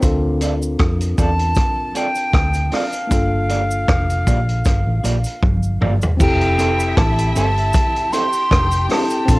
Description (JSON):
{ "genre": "lovers rock reggae", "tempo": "78 BPM", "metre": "4/4", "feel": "swing 55% on 16ths", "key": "F major", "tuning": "A4 = 440 Hz", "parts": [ { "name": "tine electric piano", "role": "accompaniment", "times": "0.0-9.4 s", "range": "Bb3 to Bb4", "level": "-25 LUFS", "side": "left 2 dB", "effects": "cassette tape" }, { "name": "vintage muted fingered electric bass", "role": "bass", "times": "0.0-9.4 s", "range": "F1 to F2", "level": "-19 LUFS", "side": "equal", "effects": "none" }, { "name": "vintage drum kit", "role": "drums", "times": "0.0-9.4 s", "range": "crash cymbal, hi-hat, kick drum, rim click, toms", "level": "-19 LUFS", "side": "equal", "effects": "cassette tape" }, { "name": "cabasa", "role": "percussion", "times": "0.0-9.4 s", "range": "none", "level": "-35 LUFS", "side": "right 1 dB", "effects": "none" }, { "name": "electric guitar through a small old amp", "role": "stabs", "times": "0.4-9.0 s", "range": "Bb3 to D5", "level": "-23 LUFS", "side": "right 3 dB", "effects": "cassette tape" }, { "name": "breathy silver concert flute", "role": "melody", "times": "1.2-9.4 s", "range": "F5 to C6", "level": "-21 LUFS", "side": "equal", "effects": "cassette tape, tape echo" }, { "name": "rich studio violin section", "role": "second line", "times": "6.2-9.4 s", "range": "E4 to G5", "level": "-28 LUFS", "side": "equal", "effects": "cassette tape" } ], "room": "light reverb", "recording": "home recording on cassette", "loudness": "-15 LUFS", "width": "side -22 dB against mid", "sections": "0.0-6.2 A section; 6.2-9.4 B section", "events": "drum fill 5.4-6.2", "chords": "0.0 Dm7; 3.1 Gm7; 6.2 Fmaj7", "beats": "| 0.02 0.80 1.57 2.34 | 3.11 3.88 4.65 5.43 | 6.20 6.97 7.74 8.51 | 9.28" }